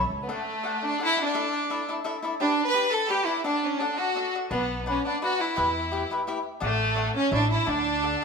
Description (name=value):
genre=mexican folk, mariachi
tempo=170 BPM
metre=3/4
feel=straight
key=D major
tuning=A4 = 439 Hz
part: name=cavaquinho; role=accompaniment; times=0.0-8.2 s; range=D4 to F#5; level=-30 LUFS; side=left 2 dB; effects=none
part: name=upright bass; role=bass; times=0.0-0.3, 4.5-8.1 s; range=A1 to E2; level=-30 LUFS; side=equal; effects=none
part: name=clear chamber violin section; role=melody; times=0.2-8.2 s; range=A3 to B4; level=-25 LUFS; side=right 1 dB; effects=none
room=moderate recital hall reverb, RT60 1.4 s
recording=none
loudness=-24 LUFS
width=side -5 dB against mid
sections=0.3-8.2 A section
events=none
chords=0.3 D; 1.3 Asus4; 2.4 G; 3.4 D; 4.5 Bm; 5.6 Em; 6.6 D/A; 7.3 A; 7.7 D